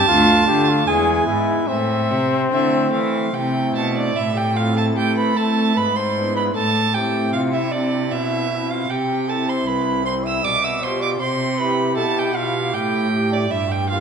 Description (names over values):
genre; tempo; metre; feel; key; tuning
classical, baroque-style sonata movement with continuo; 76 BPM; 3/4; rubato; A minor; A4 = 440 Hz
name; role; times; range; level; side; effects
mellow trumpet; melody; 0.0-14.0 s; C4 to E5; -24 LUFS; left 5 dB; none
rich violin; second line; 0.0-14.0 s; D5 to E6; -22 LUFS; right 5 dB; none
pipe organ, foundations; accompaniment; 0.0-14.0 s; C2 to G4; -24 LUFS; equal; none
rich cello; bass; 0.0-14.0 s; C2 to A3; -23 LUFS; right 2 dB; none
room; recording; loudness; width
wet recital hall reverb, RT60 1.7 s; nothing above 10.8 kHz; -17 LUFS; side -6 dB against mid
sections
0.0-4.2 A section; 4.2-14.0 B section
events
none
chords
0.1 Dm; 0.9 E; 1.7 Am; 5.8 E7/G#; 6.5 Am; 8.9 C; 10.4 G7/B; 11.2 C; 13.5 Edim/G